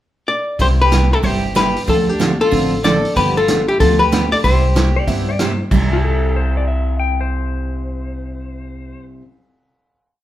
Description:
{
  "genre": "country, western swing",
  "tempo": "188 BPM",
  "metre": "4/4",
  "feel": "swing 64% on 8ths",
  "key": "C major",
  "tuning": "A4 = 440 Hz",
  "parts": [
    { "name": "archtop guitar, miked and amplified", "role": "melody", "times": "0.3-5.4 s", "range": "G4 to D5", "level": "-17 LUFS", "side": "left 3 dB", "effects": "none" },
    { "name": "clear fiddle", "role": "second line", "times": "0.6-5.4 s", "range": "D4 to A4", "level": "-25 LUFS", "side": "right 2 dB", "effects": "none" },
    { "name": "picked steel-string acoustic guitar", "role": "accompaniment", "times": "0.6-9.2 s", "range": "C3 to A4", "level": "-21 LUFS", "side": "right 4 dB", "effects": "none" },
    { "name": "upright bass", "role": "bass", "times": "0.6-8.9 s", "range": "G1 to G2", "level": "-19 LUFS", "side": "equal", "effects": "none" },
    { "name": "vintage drum kit", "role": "drums", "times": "0.6-5.8 s", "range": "crash cymbal, hi-hat, kick drum, snare drum", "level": "-22 LUFS", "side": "equal", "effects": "none" },
    { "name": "clean lap steel guitar", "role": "second line", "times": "5.0-9.0 s", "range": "G4 to G5", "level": "-25 LUFS", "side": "left 4 dB", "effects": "none" }
  ],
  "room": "wet large studio reverb, RT60 0.9 s",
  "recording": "band playing live in one room",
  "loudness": "-14 LUFS",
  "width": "side -13 dB against mid",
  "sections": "0.0-0.6 pickup bar; 0.6-5.7 A section; 5.7-8.3 final chord",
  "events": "none",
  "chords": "0.0 N.C.; 0.6 Cmaj7; 1.9 Dm7; 3.2 G9; 4.4 Cmaj7; 5.7 C"
}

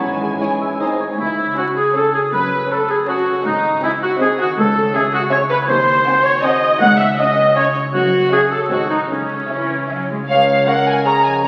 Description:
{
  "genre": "cinematic, playful, whimsical film cue",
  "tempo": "159 BPM",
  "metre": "3/4",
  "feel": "straight",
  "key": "C# minor",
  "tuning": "A4 = 439 Hz",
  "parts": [
    { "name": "rich studio violin section", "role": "melody", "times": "0.0-11.5 s", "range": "F5 to Bb5", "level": "-28 LUFS", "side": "equal", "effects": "none" },
    { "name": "clear clarinet", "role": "second line", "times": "0.0-1.0, 10.3-11.5 s", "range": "D#4 to Db5", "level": "-23 LUFS", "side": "equal", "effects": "none" },
    { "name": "small flute group", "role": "second line", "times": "0.0-1.0, 10.3-11.5 s", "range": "F5 to Bb5", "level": "-26 LUFS", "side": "equal", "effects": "none" },
    { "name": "warm oboe", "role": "second line", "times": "0.0-10.1 s", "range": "C#4 to F#5", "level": "-20 LUFS", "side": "equal", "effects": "none" },
    { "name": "rich studio viola section", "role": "accompaniment", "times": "0.0-11.1 s", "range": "G#3 to F#5", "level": "-22 LUFS", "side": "equal", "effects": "none" },
    { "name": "clear French horn section", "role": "sustained chords", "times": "0.0-1.0, 10.3-11.5 s", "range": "D#3 to C#4", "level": "-28 LUFS", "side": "equal", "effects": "none" },
    { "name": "concert harp", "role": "arpeggios", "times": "0.0-11.5 s", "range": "F#2 to D#5", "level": "-30 LUFS", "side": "equal", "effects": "none" },
    { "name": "rich studio cello section", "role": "bass", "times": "0.0-11.5 s", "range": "C#2 to G#3", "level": "-29 LUFS", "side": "equal", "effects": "none" },
    { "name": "rich studio double bass section", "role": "bass", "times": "0.0-11.5 s", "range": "F1 to D#2", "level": "-29 LUFS", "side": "equal", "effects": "none" },
    { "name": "rich studio violin section", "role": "second line", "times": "0.4-11.5 s", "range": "B#3 to Bb5", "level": "-28 LUFS", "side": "equal", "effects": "none" },
    { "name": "celesta", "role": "melody", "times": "10.3-11.5 s", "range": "F5 to Bb5", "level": "-22 LUFS", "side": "equal", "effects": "none" }
  ],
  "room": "wet scoring stage reverb, RT60 1.8 s",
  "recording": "very old 78 rpm record, vinyl crackle",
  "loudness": "-16 LUFS",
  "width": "mono",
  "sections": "0.0-1.2 A section; 1.2-10.3 B section; 10.3-11.5 C section",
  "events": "none",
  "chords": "0.0 C#m/G#; 0.8 G#; 1.2 C#m; 2.3 F#m; 3.5 G#; 4.6 C#m; 5.7 G#7/D#; 6.8 C#m; 7.9 F#m7; 8.7 G#7b9; 9.1 C#m; 10.3 Db"
}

